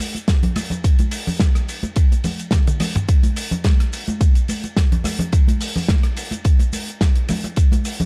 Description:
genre	nu-disco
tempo	107 BPM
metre	4/4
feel	swing 54% on 16ths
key	none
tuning	none
part	damped 70s drum kit	drums	0.0-8.1 s	hi-hat, ride cymbal, rim click, shaker, snare drum, toms	-28 LUFS	equal	none
part	congas	percussion	0.1-8.1 s	none	-27 LUFS	equal	none
part	electronic kick drum	drums	0.3-7.7 s	none	-18 LUFS	equal	none
room	studio reverb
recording	dry, gritty hardware recording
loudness	-19 LUFS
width	mono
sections	0.0-8.1 A section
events	drum fill 2.5-3.1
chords	none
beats	0.28 | 0.84 1.40 1.96 2.52 | 3.08 3.65 4.21 4.77 | 5.33 5.89 6.45 7.01 | 7.57

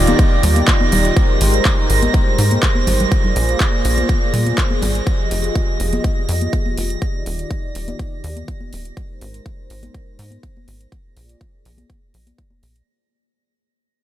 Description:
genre	progressive house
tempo	123 BPM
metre	4/4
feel	straight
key	unclear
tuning	A4 = 441 Hz
part	warm analog pad	sustained chords	0.0-12.9 s	Eb3 to Eb5	-22 LUFS	equal	chorus, sidechain pumping
part	tight sequencer bass	bass	0.0-12.8 s	Eb1 to Bb2	-18 LUFS	equal	sidechain pumping
part	drifting glass-harmonics texture	texture	0.0-12.9 s	Bb6	-26 LUFS	right 8 dB	chorus, built-in reverb, sidechain pumping
part	big-room dance drum kit	drums	0.1-12.8 s	handclaps, hi-hat	-24 LUFS	right 1 dB	overdrive, sidechain pumping on hats, sidechain pumping on perc
part	congas	percussion	0.1-12.6 s	none	-25 LUFS	left 1 dB	sidechain pumping on perc
part	electronic kick drum	drums	0.2-12.5 s	none	-18 LUFS	equal	overdrive
room	light reverb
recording	none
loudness	-14 LUFS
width	side -12 dB against mid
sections	0.0-12.9 A section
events	fade-out 0.0-12.9; filter sweep on analog synth pad 0.0-12.9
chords	0.0 Ebmaj7; 1.2 Abmaj7; 3.1 Bb7; 5.1 Fm7; 7.0 Ebmaj7; 9.0 Abmaj7; 10.9 Bb7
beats	0.19 0.68 | 1.16 1.65 2.14 2.63 | 3.12 3.60 4.09 4.58 | 5.07 5.55 6.04 6.53 | 7.02 7.51 7.99 8.48 | 8.97 9.46 9.95 10.43 | 10.92 11.41 11.90 12.38

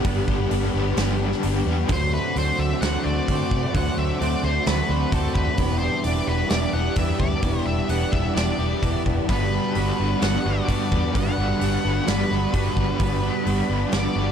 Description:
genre	rock, shoegaze and dream pop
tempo	130 BPM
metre	4/4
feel	straight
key	G major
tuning	A4 = 440 Hz
part	string machine, violas	sustained chords	0.0-14.3 s	G3 to E6	-31 LUFS	equal	ensemble chorus
part	direct-recorded clean electric guitar	arpeggios	0.0-14.3 s	F#3 to G4	-34 LUFS	left 8 dB	lush chorus, tape echo
part	crunchy overdriven guitar	riff	0.0-14.3 s	G2 to G4	-30 LUFS	left 11 dB	analog chorus
part	crunchy overdriven guitar	riff	0.0-1.9, 9.3-14.3 s	G2 to G3	-30 LUFS	equal	tremolo
part	direct-recorded clean electric guitar	riff	0.0-14.3 s	D3 to C5	-28 LUFS	right 14 dB	reverse reverb
part	big rock drum kit	drums	0.0-14.0 s	hi-hat, kick drum, snare drum	-27 LUFS	equal	none
part	vintage muted fingered electric bass	bass	0.1-14.3 s	E1 to D3	-25 LUFS	equal	none
part	octave-fuzz lead guitar	melody	1.9-14.3 s	A4 to F#5	-29 LUFS	left 2 dB	distortion, tape echo
room	small room ambience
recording	dark, warm production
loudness	-20 LUFS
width	side -8 dB against mid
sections	0.0-1.9 A section; 1.9-14.3 B section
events	none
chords	0.0 Gmaj7; 1.9 D7; 5.6 Em7; 9.3 Gmaj7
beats	| 0.06 0.52 0.98 1.44 | 1.90 2.36 2.82 3.28 | 3.74 4.20 4.67 5.13 | 5.59 6.05 6.51 6.98 | 7.44 7.90 8.37 8.83 | 9.29 9.76 10.22 10.68 | 11.15 11.61 12.07 12.54 | 13.00 13.46 13.93

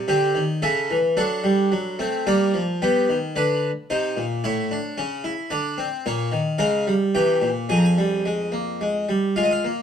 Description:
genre	classical, baroque-style 4-part fugue for harpsichord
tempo	110 BPM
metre	3/4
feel	straight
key	F minor from 6.0 s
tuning	A4 = 440 Hz
part	harpsichord	solo	0.0-9.8 s	F2 to Bb5	-20 LUFS	equal	none
room	light reverb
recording	dark, warm production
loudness	-20 LUFS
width	side -8 dB against mid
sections	0.0-2.8 A section; 2.8-9.4 B section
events	none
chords	0.0 G5; 0.6 A/C#; 1.2 D7/F#; 2.3 Gm; 2.8 G; 3.9 Cm; 4.4 A; 5.5 Csus2/D; 6.0 Gdim/Bb; 7.1 C; 7.7 Fm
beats	0.08 0.62 | 1.17 1.71 2.26 | 2.80 3.35 3.89 | 4.43 4.97 5.51 | 6.05 6.59 7.13 | 7.68 8.24 8.80 | 9.35

